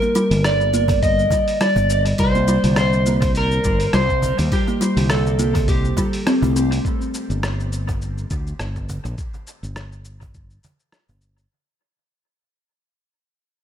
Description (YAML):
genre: organic downtempo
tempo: 103 BPM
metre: 4/4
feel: swing 55% on 16ths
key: unclear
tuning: A4 = 439 Hz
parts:
  - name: electric slide guitar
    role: melody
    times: 0.0-6.5 s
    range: G4 to Eb5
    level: -21 LUFS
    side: equal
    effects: dub echo
  - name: kalimba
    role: arpeggios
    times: 0.0-6.7 s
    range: D3 to C4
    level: -22 LUFS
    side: equal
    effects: dub echo
  - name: dusty soul sampler-style drum kit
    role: drums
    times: 0.0-11.5 s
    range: cabasa, hi-hat, rim click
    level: -28 LUFS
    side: equal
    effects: studio ambience, dub echo
  - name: cajon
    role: percussion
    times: 0.0-11.2 s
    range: none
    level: -29 LUFS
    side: right 1 dB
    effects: dub echo
  - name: fretless electric bass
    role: bass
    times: 0.3-11.4 s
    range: G1 to Eb2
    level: -21 LUFS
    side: equal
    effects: sidechain pumping
  - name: electronic kick drum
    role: drums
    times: 0.9-10.5 s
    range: none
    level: -23 LUFS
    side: equal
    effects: studio ambience
room: light reverb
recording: echo-heavy mix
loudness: -16 LUFS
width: side -9 dB against mid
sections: 0.0-6.8 A section; 6.8-11.5 B section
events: fade-out 6.8-11.5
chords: 0.0 Gm; 2.2 C5; 6.8 N.C.